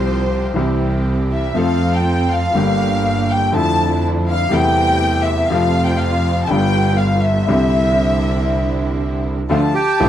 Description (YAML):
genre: tango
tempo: 121 BPM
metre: 4/4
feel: rubato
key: unclear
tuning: A4 = 439 Hz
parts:
  - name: warm studio violin section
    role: second line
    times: 0.0-10.1 s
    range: C5 to A5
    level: -20 LUFS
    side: left 1 dB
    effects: none
  - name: bright upright piano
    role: accompaniment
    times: 0.0-10.1 s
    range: G1 to A4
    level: -19 LUFS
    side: left 2 dB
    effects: none
  - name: clear studio string section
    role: stabs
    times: 0.0-10.1 s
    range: F3 to A4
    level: -25 LUFS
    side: right 7 dB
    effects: none
  - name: clear double bass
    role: bass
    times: 0.0-10.1 s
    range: G1 to F2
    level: -20 LUFS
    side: right 1 dB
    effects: none
  - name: bandoneon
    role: melody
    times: 9.7-10.1 s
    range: G4 to G5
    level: -16 LUFS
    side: right 6 dB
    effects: none
room: small room ambience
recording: dry, close 1970s-style studio recording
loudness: -14 LUFS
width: side -11 dB against mid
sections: 0.0-9.5 A section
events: violin section solo 0.0-9.5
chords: 0.0 Csus4; 0.6 C; 1.6 F; 2.6 Gm; 3.5 Dmadd9/F; 4.5 Am7/E; 5.5 F; 6.5 G7; 7.5 Cadd9; 9.5 Dm